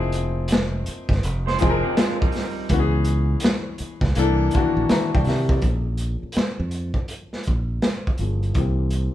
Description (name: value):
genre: R&B, neo-soul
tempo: 82 BPM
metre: 4/4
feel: swing 64% on 16ths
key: Bb dorian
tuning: A4 = 440 Hz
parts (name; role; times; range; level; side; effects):
- warm baby grand piano; accompaniment; 0.0-9.1 s; Eb3 to Bb5; -25 LUFS; left 4 dB; low-pass filter
- modern bright fingered electric bass; bass; 0.0-9.1 s; F1 to C3; -23 LUFS; right 1 dB; none
- crunchy breakbeat drum kit; drums; 0.1-9.1 s; hi-hat, kick drum, snare drum; -23 LUFS; equal; none
- electric guitar through a small old amp; second line; 1.5-2.7 s; G3 to C5; -27 LUFS; right 6 dB; none
room: moderate large studio reverb, RT60 1.2 s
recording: band playing live in one room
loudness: -19 LUFS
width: side -13 dB against mid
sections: 0.0-5.6 A section; 5.6-9.1 B section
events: filter sweep on grand piano 5.6-9.1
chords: 0.0 Fm7; 2.7 Dbm7; 4.2 C13; 5.6 Bbm7; 8.6 C7